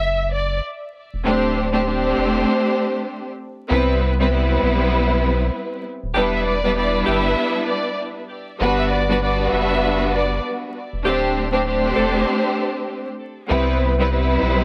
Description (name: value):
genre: hip hop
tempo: 98 BPM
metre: 4/4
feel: swing 60% on 16ths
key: unclear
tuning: A4 = 439 Hz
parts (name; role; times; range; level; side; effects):
- warm symphonic violin section; melody; 0.0-0.6, 6.3-10.4 s; D5 to E5; -27 LUFS; equal; high-pass filter, low-pass filter, plate reverb, delay
- warm sub bass; bass; 0.0-14.6 s; D1 to C2; -25 LUFS; equal; none
- warm symphonic string section; accompaniment; 1.2-14.6 s; G3 to C5; -22 LUFS; equal; high-pass filter, low-pass filter, plate reverb
- edgy saxophone section; stabs; 6.1-7.3, 11.1-12.4 s; C4 to A4; -30 LUFS; equal; high-pass filter, low-pass filter, plate reverb, delay
room: moderate small room reverb, RT60 0.6 s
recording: vinyl crackle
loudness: -20 LUFS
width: mono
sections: 0.0-14.6 A section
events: break 0.0-1.2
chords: 0.0 E7sus2; 1.2 D7sus4; 3.7 Cmaj7; 6.1 Em7; 8.6 Gmaj7; 11.0 D7sus4; 13.5 Cmaj7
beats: 0.02 0.64 | 1.25 1.86 2.47 3.09 | 3.70 4.31 4.92 5.54 | 6.15 6.76 7.37 7.98 | 8.60 9.21 9.82 10.43 | 11.04 11.66 12.27 12.88 | 13.49 14.11